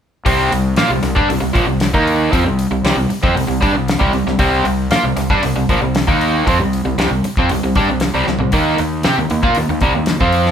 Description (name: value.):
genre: classic rock.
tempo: 116 BPM.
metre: 4/4.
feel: straight.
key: C minor.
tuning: A4 = 440 Hz.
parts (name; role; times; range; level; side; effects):
overdriven semi-hollow guitar; riff; 0.3-10.5 s; Bb2 to G4; -15 LUFS; equal; none.
fuzz fingered electric bass; bass; 0.3-10.5 s; Bb1 to C3; -20 LUFS; equal; overdrive.
damped 70s drum kit; drums; 0.3-10.5 s; hi-hat, kick drum, snare drum, toms; -20 LUFS; equal; none.
room: light reverb.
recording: band playing live in one room.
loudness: -13 LUFS.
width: side -8 dB against mid.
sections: 0.3-10.5 A section.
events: drum fill 8.3.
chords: 0.3 Cm; 8.5 Eb5.